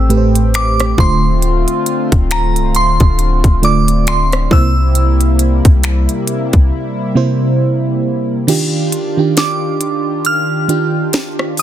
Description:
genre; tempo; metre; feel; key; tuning
contemporary R&B; 68 BPM; 4/4; swing 58% on 16ths; unclear; A4 = 440 Hz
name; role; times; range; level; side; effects
glassy synth bell; melody; 0.0-11.6 s; Bb5 to F6; -18 LUFS; right 2 dB; chorus, digital delay
FM electric piano with tremolo; accompaniment; 0.0-11.6 s; A2 to D5; -17 LUFS; right 3 dB; none
chorused pulse-width pad; sustained chords; 0.0-11.6 s; C3 to G4; -20 LUFS; left 2 dB; none
clean 808-style bass; bass; 0.0-6.7 s; C1 to C2; -14 LUFS; equal; none
trap drum kit; drums; 0.1-11.6 s; crash cymbal, finger snaps, hi-hat, kick drum, rim click, snare drum; -14 LUFS; equal; soft clipping on snare
room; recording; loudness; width
digital ambience; dense, heavily limited modern master; -11 LUFS; side -11 dB against mid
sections
0.0-8.5 A section; 8.5-11.6 B section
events
break 6.7-8.5; kick muted 8.5-11.6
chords
0.0 Am7; 1.0 Dm7; 4.5 C7; 8.5 Ebmaj9

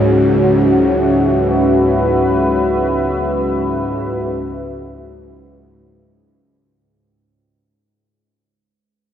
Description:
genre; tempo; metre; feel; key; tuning
dark ambient drone; free time; none; none; C# minor; A4 = 445 Hz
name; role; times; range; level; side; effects
dark analog pad; sustained chords; 0.0-6.8 s; C#4 to E5; -14 LUFS; equal; chorus
bowed-like drone; drone; 0.0-6.9 s; C#2 to G#2; -19 LUFS; equal; built-in reverb
room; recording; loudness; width
wet cathedral reverb, RT60 5.2 s; none; -13 LUFS; side -9 dB against mid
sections
0.0-6.8 A section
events
fade-out 0.5-6.8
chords
0.0 C#m

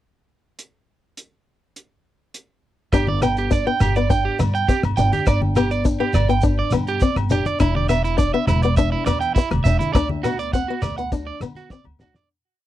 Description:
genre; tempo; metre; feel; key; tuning
highlife guitar band; 102 BPM; 4/4; straight; G major; A4 = 440 Hz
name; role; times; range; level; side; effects
cloth-damped thuddy drum kit; drums; 0.6-12.3 s; hi-hat, kick drum, rim click, snare drum; -21 LUFS; equal; none
fingerpicked swing-style acoustic guitar; accompaniment; 2.9-12.3 s; B3 to D4; -24 LUFS; left 7 dB; none
electric guitar at the edge of break-up; arpeggios; 2.9-12.3 s; E4 to G5; -23 LUFS; right 6 dB; tape echo
upright bass; bass; 2.9-12.1 s; E1 to D3; -22 LUFS; equal; none
agogo bells; percussion; 2.9-12.0 s; none; -34 LUFS; left 12 dB; none
shekere; percussion; 2.9-12.2 s; none; -29 LUFS; right 2 dB; none
congas; percussion; 3.1-12.3 s; none; -27 LUFS; left 2 dB; none
room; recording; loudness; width
little or no reverb; dry, close 1970s-style studio recording; -17 LUFS; side -13 dB against mid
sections
0.6-2.9 pickup bar; 2.9-12.3 groove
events
fade-out 9.9-12.3; drum fill 11.6-12.3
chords
0.6 N.C.; 2.9 G; 7.6 E7(no3); 9.9 D

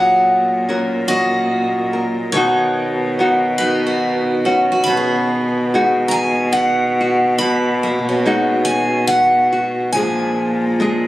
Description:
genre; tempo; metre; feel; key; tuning
acoustic folk-pop ballad; 47 BPM (dotted quarters); 6/8; straight; unclear; A4 = 440 Hz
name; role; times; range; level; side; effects
picked steel-string acoustic guitar; melody; 0.0-11.1 s; B4 to Cb6; -19 LUFS; equal; plate reverb
nylon-string guitar; accompaniment; 0.0-11.1 s; Bb2 to Bb4; -19 LUFS; equal; none
picked steel-string acoustic guitar; arpeggios; 0.0-9.0 s; Bb3 to Ab4; -21 LUFS; right 1 dB; none
warm cello; bass; 0.0-11.1 s; Bb2 to B2; -20 LUFS; equal; none
room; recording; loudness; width
moderate studio reverb, RT60 0.6 s; recorded on a phone in the room, club reverb; -14 LUFS; side -16 dB against mid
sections
0.0-11.1 A section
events
none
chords
0.0 Gb/Bb; 2.3 B; 4.9 Abm7/Cb; 9.9 Bb7

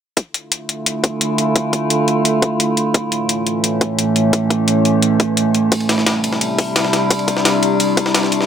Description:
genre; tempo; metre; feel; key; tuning
dark technical drum and bass; 173 BPM; 4/4; straight; D minor; A4 = 441 Hz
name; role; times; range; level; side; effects
metallic inharmonic drone; sustained chords; 0.7-8.5 s; A2 to F4; -16 LUFS; right 1 dB; chorus, built-in reverb, sidechain pumping
electronic hi-hat; drums; 0.2-8.4 s; none; -19 LUFS; left 2 dB; none
electronic kick drum; drums; 0.2-8.0 s; none; -17 LUFS; left 1 dB; overdrive, high-pass filter on kick
breakbeat sampler-style drum kit; drums; 5.7-8.5 s; hi-hat, ride cymbal, snare drum; -19 LUFS; left 1 dB; high-pass filter on cymbals, high-pass filter on snare, high-pass filter on hats
room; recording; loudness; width
wet digital room reverb, RT60 1.3 s; none; -14 LUFS; side -8 dB against mid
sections
0.2-8.5 A section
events
none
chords
0.2 Dm; 2.9 A; 5.7 C

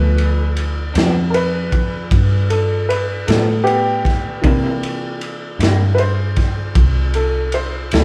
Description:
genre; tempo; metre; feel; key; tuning
slow blues; 52 BPM (dotted quarters); 12/8; straight; G mixolydian; A4 = 441 Hz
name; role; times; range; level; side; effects
warm upright piano; accompaniment; 0.0-8.0 s; E3 to C5; -23 LUFS; equal; none
vintage muted fingered electric bass; bass; 0.0-8.0 s; C2 to C3; -20 LUFS; equal; none
crunchy breakbeat drum kit; drums; 0.2-8.0 s; kick drum, ride cymbal, snare drum; -22 LUFS; equal; none
electric guitar through a small old amp; accompaniment; 0.9-8.0 s; G2 to E4; -28 LUFS; equal; tremolo
room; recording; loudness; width
moderate large studio reverb, RT60 0.9 s; band playing live in one room; -17 LUFS; mono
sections
0.0-8.0 A section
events
upright piano solo 0.0-8.0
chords
0.0 G7; 4.4 C7

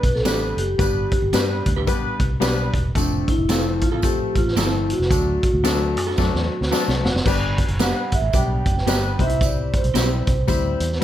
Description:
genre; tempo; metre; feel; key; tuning
uptempo 1960s-style soul; 111 BPM; 4/4; swing 60% on 8ths; G major from 7.3 s; A4 = 435 Hz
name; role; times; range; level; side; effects
vibraphone with soft mallets; melody; 0.0-11.0 s; D4 to G5; -24 LUFS; right 1 dB; plate reverb
clear grand piano; accompaniment; 0.0-11.0 s; F3 to A5; -26 LUFS; left 6 dB; none
vintage muted fingered electric bass; bass; 0.0-11.0 s; E1 to G2; -24 LUFS; equal; none
vintage drum kit; drums; 0.0-11.0 s; crash cymbal, hi-hat, kick drum, snare drum; -22 LUFS; equal; none
electric guitar through a small old amp; stabs; 0.3-10.1 s; B3 to B4; -29 LUFS; right 4 dB; spring reverb
tambourine; percussion; 0.3-10.6 s; none; -33 LUFS; right 6 dB; none
room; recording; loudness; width
light reverb; none; -18 LUFS; side -12 dB against mid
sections
0.0-7.3 A section; 7.3-11.0 B section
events
drum fill 6.2-7.3; grand piano fill 6.5-7.3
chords
0.0 G; 3.0 F; 5.1 D; 7.3 G; 9.1 C

